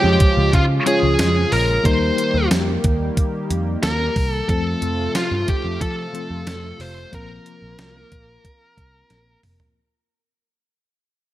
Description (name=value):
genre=1980s-style pop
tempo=91 BPM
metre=4/4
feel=straight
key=unclear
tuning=A4 = 439 Hz
part: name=high-gain lead guitar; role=melody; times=0.0-9.4 s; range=F4 to C5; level=-22 LUFS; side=equal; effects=distortion, digital delay
part: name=FM electric piano with auto-pan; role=accompaniment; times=0.0-9.8 s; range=F3 to Db5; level=-26 LUFS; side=left 3 dB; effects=none
part: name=chorused pulse-width pad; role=sustained chords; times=0.0-9.7 s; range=C3 to G4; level=-26 LUFS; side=right 2 dB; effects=none
part: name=vintage muted picked electric bass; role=bass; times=0.0-9.6 s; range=F1 to F3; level=-22 LUFS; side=equal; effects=none
part: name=clean 12-bit digital drum machine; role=drums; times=0.2-9.8 s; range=hi-hat, kick drum, snare drum, tambourine, toms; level=-20 LUFS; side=equal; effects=gated reverb
room=light reverb, digital ambience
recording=none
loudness=-17 LUFS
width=side -14 dB against mid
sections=0.0-9.8 A section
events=fade-out 0.0-9.8; drum fill 9.1-9.8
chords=0.0 Db; 1.8 Eb; 4.5 F; 7.1 Bbsus2